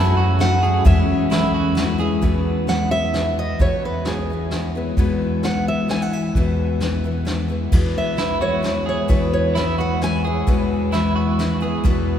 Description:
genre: acoustic folk duo or small band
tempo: 131 BPM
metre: 3/4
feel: straight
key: E major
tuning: A4 = 440 Hz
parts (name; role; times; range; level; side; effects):
- picked steel-string acoustic guitar; melody; 0.0-10.9 s; G#4 to A5; -25 LUFS; right 2 dB; none
- picked steel-string acoustic guitar; accompaniment; 0.0-12.2 s; E2 to F#4; -22 LUFS; left 3 dB; none
- granular cloud pad; sustained chords; 0.1-2.2 s; C#4; -29 LUFS; equal; none
- electric guitar at the edge of break-up; arpeggios; 0.0-2.2, 8.2-11.8 s; E4 to G#4; -27 LUFS; right 3 dB; tremolo
- upright bass; bass; 0.0-12.2 s; E2 to F#2; -23 LUFS; equal; none
- vintage brush drum kit; drums; 0.4-12.0 s; crash cymbal, hi-hat, kick drum, snare drum; -24 LUFS; equal; none
room: wet cathedral reverb, RT60 6.1 s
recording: recorded in a church or concert hall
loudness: -17 LUFS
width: side -9 dB against mid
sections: 0.0-2.2 A section; 2.2-7.7 B section; 7.7-12.2 C section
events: steel-string acoustic guitar solo 7.7-12.2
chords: 0.0 F#m; 0.9 E6; 2.2 E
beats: 0.40 | 0.86 1.31 1.77 | 2.23 2.68 3.14 | 3.60 4.05 4.51 | 4.97 5.43 5.89 | 6.35 6.81 7.27 | 7.73 8.19 8.64 | 9.10 9.56 10.02 | 10.48 10.94 11.40 | 11.86

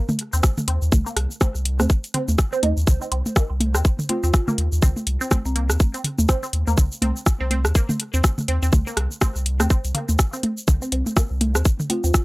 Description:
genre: minimal techno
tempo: 123 BPM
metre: 4/4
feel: swing 58% on 16ths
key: C minor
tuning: A4 = 440 Hz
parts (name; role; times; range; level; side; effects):
- garage drum kit; drums; 0.1-12.2 s; hi-hat, rim click, shaker; -26 LUFS; equal; none
- garage drum kit; percussion; 0.1-12.0 s; rim click, toms; -25 LUFS; equal; none
- resonant blip pluck; riff; 0.3-12.1 s; Bb3 to Eb4; -29 LUFS; right 1 dB; phaser, sidechain pumping, tape echo
- round analog bass; bass; 0.3-12.1 s; C2 to Eb2; -21 LUFS; equal; sidechain pumping
- electronic kick drum; drums; 0.4-12.2 s; none; -18 LUFS; equal; none
- folk marimba with soft mallets; melody; 4.1-5.8, 11.9-12.1 s; C4 to F4; -30 LUFS; equal; none
room: little or no reverb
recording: dry, gritty hardware recording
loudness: -18 LUFS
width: side -22 dB against mid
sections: 0.0-12.2 A section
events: none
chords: 0.0 Cm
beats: 0.43 | 0.92 1.41 1.90 2.39 | 2.87 3.36 3.85 4.34 | 4.83 5.31 5.80 6.29 | 6.78 7.26 7.75 8.24 | 8.73 9.21 9.70 10.19 | 10.68 11.17 11.65 12.14

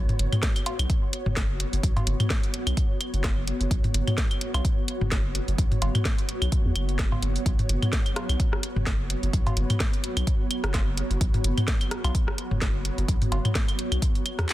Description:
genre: minimal techno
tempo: 128 BPM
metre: 4/4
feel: swing 56% on 16ths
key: unclear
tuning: A4 = 440 Hz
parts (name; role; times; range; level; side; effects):
- punchy sub bass; bass; 0.0-14.4 s; F#1 to E2; -27 LUFS; equal; sidechain pumping
- ethereal airy pad; texture; 0.0-14.5 s; B3 to C#5; -34 LUFS; equal; ensemble chorus, built-in reverb, sidechain pumping
- swarming drone; texture; 1.7-14.5 s; F#3 to F#4; -41 LUFS; right 4 dB; built-in reverb, sidechain pumping
- garage drum kit; drums; 0.1-14.5 s; handclaps, hi-hat, snare drum; -31 LUFS; equal; none
- booming analog drum machine; percussion; 0.1-14.5 s; claves, cowbell, rim click, toms; -28 LUFS; equal; soft clipping on snare
- electronic kick drum; drums; 0.4-14.1 s; none; -25 LUFS; equal; none
room: little or no reverb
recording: dense, heavily limited modern master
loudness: -23 LUFS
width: side -15 dB against mid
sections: 0.0-14.5 A section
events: none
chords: 0.0 B5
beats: 0.43 0.90 1.36 | 1.83 2.30 2.77 3.24 | 3.71 4.18 4.65 5.12 | 5.58 6.05 6.52 6.99 | 7.46 7.93 8.40 8.87 | 9.33 9.80 10.27 10.74 | 11.21 11.68 12.15 12.62 | 13.08 13.55 14.02 14.49

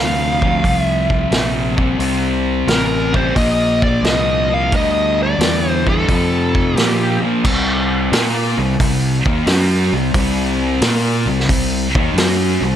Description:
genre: blues rock power trio and southern rock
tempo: 88 BPM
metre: 4/4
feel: swing 68% on 8ths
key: unclear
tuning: A4 = 440 Hz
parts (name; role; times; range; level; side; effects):
- bluesy overdriven lead guitar; melody; 0.0-7.2 s; A4 to F5; -19 LUFS; left 1 dB; distortion
- fuzz guitar; riff; 0.0-12.8 s; F2 to Bb4; -18 LUFS; left 1 dB; distortion
- growling fingered electric bass; bass; 0.0-12.8 s; A1 to Bb2; -20 LUFS; equal; overdrive
- vintage drum kit; drums; 0.4-12.4 s; crash cymbal, hi-hat, kick drum, snare drum; -19 LUFS; equal; none
room: light reverb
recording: none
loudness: -14 LUFS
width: side -10 dB against mid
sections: 0.0-7.4 A section; 7.4-12.8 B section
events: none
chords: 0.0 F5; 1.7 C5; 3.4 Bb5; 4.7 G5; 6.1 F; 6.8 Bb5; 7.4 C5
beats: 0.64 1.32 | 2.00 2.68 3.36 4.04 | 4.72 5.40 6.08 6.76 | 7.44 8.12 8.79 9.47 | 10.15 10.82 11.50 12.17

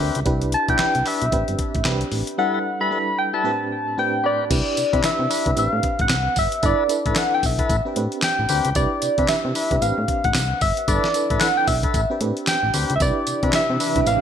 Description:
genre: R&B, new jack swing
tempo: 113 BPM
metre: 4/4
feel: swing 60% on 16ths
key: A dorian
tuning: A4 = 435 Hz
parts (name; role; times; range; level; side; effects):
- soft struck synth lead; melody; 0.0-14.2 s; D5 to B5; -22 LUFS; left 1 dB; chorus, phaser
- FM electric piano with tremolo; accompaniment; 0.0-14.2 s; A2 to B4; -27 LUFS; right 3 dB; none
- tonewheel organ; stabs; 0.0-14.0 s; G3 to B4; -29 LUFS; left 6 dB; overdrive
- solid FM bass; bass; 0.0-14.2 s; G1 to C3; -24 LUFS; equal; none
- dusty soul sampler-style drum kit; drums; 0.1-14.2 s; crash cymbal, handclaps, hi-hat, kick drum, snare drum, tambourine; -24 LUFS; equal; gated reverb
- granular cloud pad; sustained chords; 13.4-14.2 s; C3 to B4; -29 LUFS; right 1 dB; built-in reverb
room: light reverb, digital ambience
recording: bright 1980s-style digital production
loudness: -18 LUFS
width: side -8 dB against mid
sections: 0.0-4.5 A section; 4.5-14.2 B section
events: none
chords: 0.3 Cmaj9; 1.3 Am11; 2.4 G69; 3.4 Am11; 4.5 Cmaj9; 5.6 Am11; 6.6 G69 (rootless); 7.7 Am11; 8.8 Cmaj9; 9.8 Am11; 10.9 G69 (rootless); 11.9 Am11; 13.0 Cmaj9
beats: | 0.26 0.79 1.32 1.85 | 2.38 2.91 3.44 3.98 | 4.51 5.04 5.57 6.10 | 6.63 7.16 7.69 8.22 | 8.75 9.29 9.82 10.35 | 10.88 11.41 11.94 12.47 | 13.00 13.53 14.06

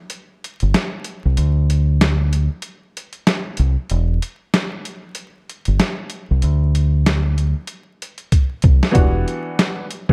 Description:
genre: hip hop, boom-bap hip-hop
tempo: 95 BPM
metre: 4/4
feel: swing 60% on 16ths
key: E minor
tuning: A4 = 439 Hz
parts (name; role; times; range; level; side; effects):
- boom bap sampler-style drum kit; drums; 0.1-10.1 s; hi-hat, kick drum, snare drum; -20 LUFS; equal; none
- deep dub fingered electric bass; bass; 0.6-9.2 s; E1 to D2; -18 LUFS; equal; none
- warm upright piano; accompaniment; 8.9-10.1 s; E3 to F#4; -23 LUFS; equal; cassette tape, high-pass filter, low-pass filter
room: little or no reverb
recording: dark, warm production, vinyl crackle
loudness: -18 LUFS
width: mono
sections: 0.0-10.1 A section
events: break 0.0-9.0; drum fill 8.3-9.0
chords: 0.0 N.C.; 3.9 Em; 6.4 N.C.; 9.0 Em9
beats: 0.11 0.74 | 1.38 2.01 2.64 3.27 | 3.90 4.53 5.17 5.80 | 6.43 7.06 7.69 8.32 | 8.96 9.59

